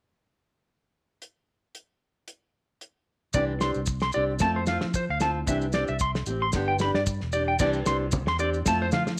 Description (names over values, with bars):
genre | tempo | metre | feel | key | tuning
highlife guitar band | 113 BPM | 4/4 | swing 54% on 16ths | C major | A4 = 439 Hz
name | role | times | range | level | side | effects
damped 70s drum kit | drums | 1.2-9.2 s | crash cymbal, hi-hat, kick drum, snare drum | -32 LUFS | equal | none
fingerpicked steel-string acoustic guitar | accompaniment | 3.3-9.1 s | E3 to G4 | -32 LUFS | equal | none
electric guitar at the edge of break-up | arpeggios | 3.3-9.0 s | C5 to C6 | -30 LUFS | equal | slapback echo
fingered electric bass | bass | 3.3-9.2 s | E1 to F3 | -33 LUFS | equal | none
maracas | percussion | 3.3-9.1 s | none | -39 LUFS | equal | none
congas | percussion | 7.6-9.1 s | none | -35 LUFS | equal | none
room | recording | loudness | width
moderate spring reverb, RT60 1.2 s, small room ambience | none | -26 LUFS | mono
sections
1.2-3.4 A section; 3.4-7.6 B section; 7.6-9.2 C section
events
none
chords
1.2 N.C.; 3.4 Cadd9; 4.4 F; 5.5 Cadd9; 6.5 G; 7.6 Cadd9; 8.7 F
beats
| 1.22 1.75 2.28 2.82 | 3.35 3.88 4.42 4.95 | 5.48 6.01 6.54 7.08 | 7.61 8.14 8.67